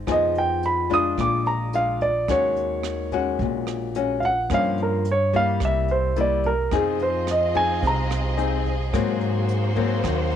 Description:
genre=bossa nova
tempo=108 BPM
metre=4/4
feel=straight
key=unclear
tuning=A4 = 440 Hz
part: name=nylon-string guitar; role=accompaniment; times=0.0-10.4 s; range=G2 to Ab4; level=-26 LUFS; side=left 9 dB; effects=none
part: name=upright bass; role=bass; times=0.0-10.4 s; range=Bb1 to Ab2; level=-27 LUFS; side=right 2 dB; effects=none
part: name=warm baby grand piano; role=melody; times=0.1-9.5 s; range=Ab4 to Eb6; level=-22 LUFS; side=right 2 dB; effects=none
part: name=jazz brush drum kit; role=drums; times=0.1-10.4 s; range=hi-hat, kick drum, rim click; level=-35 LUFS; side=right 6 dB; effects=none
part: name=warm symphonic violin section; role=sustained chords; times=6.7-10.4 s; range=Bb3 to Eb5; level=-30 LUFS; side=right 1 dB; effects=none
room=light reverb, small room ambience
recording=1960s-style stereo with parts hard left and right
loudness=-20 LUFS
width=side -9 dB against mid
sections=0.0-10.4 A section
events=grand piano solo 0.0-10.4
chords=0.1 Fm7b5; 1.2 Bb7; 2.3 Ebm7; 4.5 Gm7b5; 5.6 C7; 6.7 Fm7; 8.9 Ab9

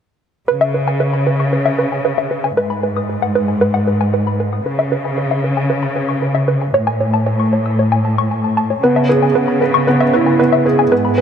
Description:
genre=piano and strings electronica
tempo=115 BPM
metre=4/4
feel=straight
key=C# minor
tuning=A4 = 440 Hz
part: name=warbly dusty pluck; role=arpeggios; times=0.5-11.2 s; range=B4 to E6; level=-18 LUFS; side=left 1 dB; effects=chorus, tape echo
part: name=muted studio cello section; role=bass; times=0.5-11.2 s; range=G#2 to C#3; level=-17 LUFS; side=equal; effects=none
part: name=felt-muted upright piano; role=riff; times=8.8-11.2 s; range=B3 to B4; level=-13 LUFS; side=right 3 dB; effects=tape echo
room=moderate huge ambient reverb, RT60 6.3 s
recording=none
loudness=-13 LUFS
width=side -8 dB against mid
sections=0.5-11.2 A section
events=filter sweep on synth arpeggio sound 0.5-11.2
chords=0.5 C#m7; 2.6 G#m; 4.7 C#m7; 6.7 A; 8.8 C#m7

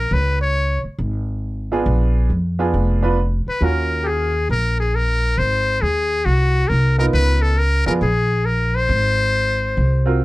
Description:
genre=jazz, small-group swing and bop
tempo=137 BPM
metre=4/4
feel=swing 66% on 8ths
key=unclear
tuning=A4 = 440 Hz
part: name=trumpet with metal mute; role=melody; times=0.0-0.8, 3.5-10.2 s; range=Gb4 to Db5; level=-20 LUFS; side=left 2 dB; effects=none
part: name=upright bass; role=bass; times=0.0-10.2 s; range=F1 to F2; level=-18 LUFS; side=equal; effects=none
part: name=bright upright piano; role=accompaniment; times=1.7-4.3, 7.0-10.2 s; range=Cb4 to Cb5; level=-22 LUFS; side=right 3 dB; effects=none
room=light reverb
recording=dark, warm production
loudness=-16 LUFS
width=side -19 dB against mid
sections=0.0-10.2 A section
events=none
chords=0.1 Db5; 1.9 Bb7b9; 3.6 Ebm7; 5.4 Ab9; 7.1 Db13; 8.0 Absus2/Bb; 8.9 Ab

